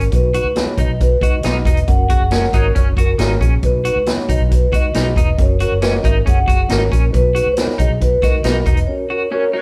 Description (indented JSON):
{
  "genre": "uptempo 1960s-style soul",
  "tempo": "137 BPM",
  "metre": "4/4",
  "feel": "straight",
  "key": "B major",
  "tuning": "A4 = 440 Hz",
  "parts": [
    { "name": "mellow tine electric piano", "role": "accompaniment", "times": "0.0-9.6 s", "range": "C#4 to C#5", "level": "-26 LUFS", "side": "equal", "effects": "phaser" },
    { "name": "clean electric guitar", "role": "riff", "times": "0.0-9.6 s", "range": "C#4 to F#4", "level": "-28 LUFS", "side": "equal", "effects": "tremolo" },
    { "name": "vintage muted fingered electric bass", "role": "bass", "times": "0.0-8.8 s", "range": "E1 to C#2", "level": "-22 LUFS", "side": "equal", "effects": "none" },
    { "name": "swinging big-band drum kit", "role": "drums", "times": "0.0-8.9 s", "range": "hi-hat, kick drum, snare drum", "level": "-19 LUFS", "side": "equal", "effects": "none" },
    { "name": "vibraphone with soft mallets", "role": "melody", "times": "0.1-9.6 s", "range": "A#4 to F#5", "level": "-23 LUFS", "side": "equal", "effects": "none" },
    { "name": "electric guitar through a small old amp", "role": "stabs", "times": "0.6-9.5 s", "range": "A#3 to C#5", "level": "-27 LUFS", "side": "equal", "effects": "none" },
    { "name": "mellow saxophone section", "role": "second line", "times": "2.5-2.8, 9.6 s", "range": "A#3 to C#5", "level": "-31 LUFS", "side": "equal", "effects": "none" }
  ],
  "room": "moderate stone room reverb, RT60 1.2 s",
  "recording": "band playing live in one room",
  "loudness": "-16 LUFS",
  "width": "mono",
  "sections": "0.0-9.6 A section",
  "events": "band accent 1.9-3.6, 8.9-9.6; break 8.9-9.6",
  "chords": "0.1 B; 1.9 F#; 3.6 B; 5.4 F#; 7.1 B; 8.9 F#"
}